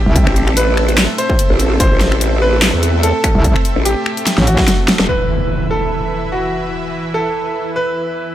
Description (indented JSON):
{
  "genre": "heavy wobble dubstep",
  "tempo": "146 BPM",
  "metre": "4/4",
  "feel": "swing 55% on 16ths, half-time",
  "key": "E minor",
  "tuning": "A4 = 442 Hz",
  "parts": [
    { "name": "bright grand piano", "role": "melody", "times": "0.0-8.3 s", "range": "F#4 to C5", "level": "-20 LUFS", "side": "equal", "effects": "dub echo" },
    { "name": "supersaw pad", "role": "sustained chords", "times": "0.0-8.3 s", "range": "E3 to E5", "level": "-22 LUFS", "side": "equal", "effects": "sidechain pumping" },
    { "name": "metallic wobble bass", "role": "bass", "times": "0.1-0.3, 3.4-4.6 s", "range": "A1 to C2", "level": "-12 LUFS", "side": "equal", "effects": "chorus, overdrive" },
    { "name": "dubstep drum kit", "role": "drums", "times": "0.2-5.1 s", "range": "finger snaps, handclaps, hi-hat, snare drum", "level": "-16 LUFS", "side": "equal", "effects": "low-pass filter on snare, low-pass filter on hats" },
    { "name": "electronic kick drum", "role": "drums", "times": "0.2-4.7 s", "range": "none", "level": "-15 LUFS", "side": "equal", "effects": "distortion" },
    { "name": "growl bass", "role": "bass", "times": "0.3-5.1 s", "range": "E1 to E2", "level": "-14 LUFS", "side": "equal", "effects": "chorus, overdrive" },
    { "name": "impact", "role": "sound effects", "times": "5.1-6.7 s", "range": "none", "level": "-21 LUFS", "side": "equal", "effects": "none" }
  ],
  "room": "little or no reverb",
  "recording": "none",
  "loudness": "-12 LUFS",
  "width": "side -12 dB against mid",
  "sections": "0.0-5.1 A section; 5.1-8.3 B section",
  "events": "drop 0.0-5.1; drum fill 4.3-5.1; band accent 5.0; impact 5.1-6.7",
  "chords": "0.0 Am; 5.1 E5"
}